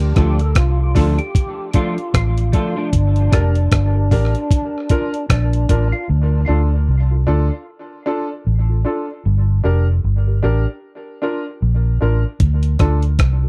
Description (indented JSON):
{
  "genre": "dub reggae",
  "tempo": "76 BPM",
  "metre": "4/4",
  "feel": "swing 58% on 16ths",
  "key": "D minor",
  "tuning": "A4 = 439 Hz",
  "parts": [
    { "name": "percussive tonewheel organ", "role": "melody", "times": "0.0-6.1 s", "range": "D4 to A4", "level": "-28 LUFS", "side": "equal", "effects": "chorus vibrato, slow rotary speaker, tape echo" },
    { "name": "vintage muted fingered electric bass", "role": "bass", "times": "0.0-13.5 s", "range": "F1 to D2", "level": "-18 LUFS", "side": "equal", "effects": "none" },
    { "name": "breakbeat sampler-style drum kit", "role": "drums", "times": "0.0-5.9, 12.4-13.4 s", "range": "hi-hat, kick drum, rim click", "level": "-19 LUFS", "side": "equal", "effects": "none" },
    { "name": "semi-hollow electric guitar", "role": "accompaniment", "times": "0.2-2.9 s", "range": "F3 to F4", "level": "-29 LUFS", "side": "equal", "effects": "ensemble chorus, tape echo" },
    { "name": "warm upright piano", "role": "stabs", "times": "0.2-13.5 s", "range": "D4 to Bb4", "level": "-27 LUFS", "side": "equal", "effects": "tape echo" }
  ],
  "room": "little or no reverb",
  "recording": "dry, close 1970s-style studio recording",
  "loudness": "-17 LUFS",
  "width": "mono",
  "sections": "0.0-13.5 A section",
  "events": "part muted 6.1-12.4",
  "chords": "0.0 Dm; 2.9 Gm; 4.5 Bb; 6.1 Dm; 9.2 Gm; 10.8 Bb; 12.4 Dm",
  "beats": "0.56 1.35 2.14 | 2.93 3.72 4.51 5.29 | 6.08 6.87 7.66 8.45 | 9.24 10.03 10.82 11.61 | 12.40 13.19"
}